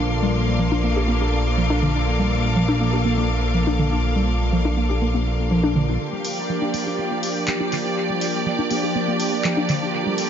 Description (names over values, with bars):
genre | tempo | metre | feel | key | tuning
melodic techno | 122 BPM | 4/4 | straight | G minor | A4 = 442 Hz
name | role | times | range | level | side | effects
lush unison pad | sustained chords | 0.0-10.3 s | F3 to A4 | -25 LUFS | equal | chorus
fat analog bass | bass | 0.0-6.0 s | Bb1 | -22 LUFS | equal | none
bright studio string section | texture | 0.0-10.3 s | Bb3 to D6 | -26 LUFS | equal | none
warbly dusty pluck | arpeggios | 0.2-10.1 s | D3 to G4 | -24 LUFS | equal | chorus, dub echo
deep house drum kit | drums | 6.2-10.3 s | handclaps, hi-hat | -29 LUFS | left 1 dB | dub echo
room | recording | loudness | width
moderate echo chamber reverb, RT60 1.9 s, digital ambience | echo-heavy mix, nothing above 7.4 kHz | -19 LUFS | side -8 dB against mid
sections
0.0-6.0 A section; 6.0-10.3 B section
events
build-up 6.0-10.3; filter sweep on synth arpeggio sound 6.0-10.3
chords
0.0 Bbmaj7; 6.0 Gm7